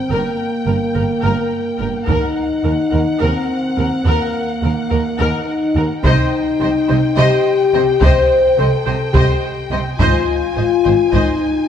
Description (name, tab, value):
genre	cinematic, epic orchestral film score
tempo	212 BPM (eighths)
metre	7/8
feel	straight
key	unclear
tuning	A4 = 440 Hz
part	warm symphonic violin section	melody	0.0-11.7 s	Gb5 to Ab5	-28 LUFS	left 4 dB	none
part	dark French horn section	sustained chords	0.0-11.7 s	Bb3 to C5	-17 LUFS	left 3 dB	none
part	warm symphonic violin section	second line	0.1-11.4 s	Bb4 to Eb5	-26 LUFS	left 1 dB	none
part	rich studio viola section	accompaniment	0.1-11.4 s	Bb4 to C5	-25 LUFS	right 1 dB	none
part	rich symphonic cello section	bass	0.1-11.2 s	Eb2 to C3	-22 LUFS	right 2 dB	none
part	warm studio double bass section	bass	0.1-11.2 s	G1 to Eb2	-21 LUFS	right 3 dB	none
part	taiko ensemble	drums	2.1-11.7 s	none	-18 LUFS	equal	none
room	wet scoring stage reverb, RT60 1.8 s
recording	dark, warm production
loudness	-14 LUFS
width	side -8 dB against mid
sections	0.0-11.7 A section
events	none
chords	0.0 Gm; 2.1 Ebm; 6.0 Cm; 10.0 Ab